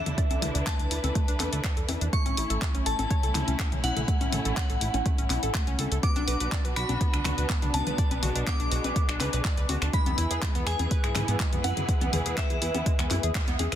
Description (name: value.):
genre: progressive house.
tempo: 123 BPM.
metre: 4/4.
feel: straight.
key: B dorian.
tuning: A4 = 439 Hz.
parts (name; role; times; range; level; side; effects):
glassy synth bell; melody; 0.0-13.7 s; E5 to D6; -34 LUFS; left 1 dB; chorus, phaser, sidechain pumping, digital delay.
dark symphonic string section; sustained chords; 0.0-13.8 s; D3 to B4; -36 LUFS; equal; sidechain pumping.
plucky analog bass; bass; 0.0-13.8 s; A1 to G#2; -30 LUFS; equal; sidechain pumping.
analog pluck; arpeggios; 0.1-13.8 s; G#3 to D5; -34 LUFS; equal; chorus, vintage 12-bit sampler grit, sidechain pumping, digital delay.
deep house drum kit; drums; 0.1-13.8 s; finger snaps, handclaps, hi-hat; -33 LUFS; left 1 dB; overdrive.
electronic toms and congas; percussion; 0.1-13.7 s; none; -36 LUFS; left 4 dB; sidechain pumping on perc, sidechain pumping on toms.
electronic kick drum; drums; 0.2-13.5 s; none; -27 LUFS; equal; overdrive.
room: light reverb, digital ambience.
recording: dense, heavily limited modern master.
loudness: -24 LUFS.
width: side -11 dB against mid.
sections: 0.0-13.8 A section.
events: filter sweep on synth pluck 0.0-13.8; band accent 13.3.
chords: 0.0 Dsus2; 2.1 A; 6.0 Bm; 9.9 E.